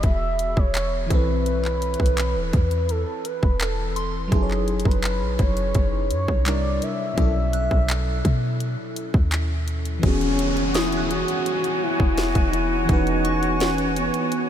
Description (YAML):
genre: contemporary R&B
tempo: 84 BPM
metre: 4/4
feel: straight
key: E major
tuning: A4 = 440 Hz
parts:
  - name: gliding portamento lead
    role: melody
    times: 0.0-14.5 s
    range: B3 to E5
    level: -26 LUFS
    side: equal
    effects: chorus, diffuse ambient delay
  - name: FM electric piano with soft pad layer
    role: accompaniment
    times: 0.0-14.5 s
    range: B2 to E5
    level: -28 LUFS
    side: left 1 dB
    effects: chorus
  - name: clean 808-style bass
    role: bass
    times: 0.0-14.1 s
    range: D#1 to B2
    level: -24 LUFS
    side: equal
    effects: none
  - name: trap drum kit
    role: drums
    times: 0.0-14.5 s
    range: handclaps, hi-hat, kick drum, snare drum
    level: -25 LUFS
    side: equal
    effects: none
  - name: soft synth bell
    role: texture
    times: 0.0-14.5 s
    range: B5 to F#6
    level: -37 LUFS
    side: equal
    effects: chorus, phaser, diffuse ambient delay
  - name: breathy bright flute section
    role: sustained chords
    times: 10.0-14.5 s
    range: F#4 to G#5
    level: -26 LUFS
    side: equal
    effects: none
  - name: downlifter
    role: sound effects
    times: 10.0-14.5 s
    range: none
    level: -32 LUFS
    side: equal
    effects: none
room: light reverb, digital ambience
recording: none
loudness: -20 LUFS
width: side -10 dB against mid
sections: 0.0-10.0 A section; 10.0-14.5 B section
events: none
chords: 0.0 E; 1.1 Amadd9; 4.3 F#7sus2; 6.5 C9; 7.2 B9sus4; 10.0 E69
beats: 0.03 0.75 | 1.46 2.18 2.89 3.60 | 4.32 5.03 5.75 6.46 | 7.18 7.89 8.61 9.32 | 10.03 10.75 11.46 12.18 | 12.89 13.61 14.32